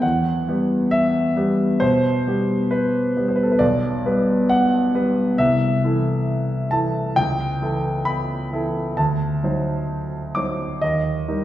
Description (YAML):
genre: classical, romantic character piece for solo piano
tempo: 66 BPM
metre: 4/4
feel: rubato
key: E minor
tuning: A4 = 440 Hz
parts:
  - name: warm grand piano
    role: solo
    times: 0.0-11.4 s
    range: B1 to D6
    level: -18 LUFS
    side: equal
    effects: none
room: wet recital hall reverb, RT60 1.5 s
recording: heard from further back in the room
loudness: -18 LUFS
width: side -13 dB against mid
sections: 0.0-11.4 A section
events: none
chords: 0.0 Em; 3.6 G/B; 5.4 Am/C; 7.2 A7/C#; 9.0 D7b9; 10.8 Eb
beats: | 0.03 0.93 1.82 2.72 | 3.60 4.51 5.40 6.29 | 7.17 8.07 8.98 9.90 | 10.81